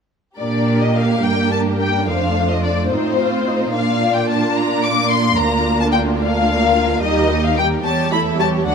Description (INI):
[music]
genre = quick classical-period movement for string orchestra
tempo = 73 BPM (dotted quarters)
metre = 6/8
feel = rubato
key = Bb major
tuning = A4 = 440 Hz
[part]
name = warm symphonic violin section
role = melody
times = 0.4-8.7 s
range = C5 to D6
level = -20 LUFS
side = left 5 dB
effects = none
[part]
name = warm symphonic violin section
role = second line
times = 0.4-8.7 s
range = D4 to E5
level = -23 LUFS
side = left 2 dB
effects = none
[part]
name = warm symphonic viola section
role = accompaniment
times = 0.4-8.7 s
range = F#3 to G4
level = -20 LUFS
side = right 2 dB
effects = none
[part]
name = rich symphonic cello section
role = bass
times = 0.4-8.7 s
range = D2 to Bb2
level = -21 LUFS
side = right 3 dB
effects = none
[sound]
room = moderate scoring stage reverb, RT60 1.8 s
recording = none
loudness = -15 LUFS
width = side -6 dB against mid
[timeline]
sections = 0.4-8.7 A section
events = none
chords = 0.4 Bb; 2.1 F7; 3.7 Bb; 5.4 Bb/D; 7.0 Eb; 7.9 A7/E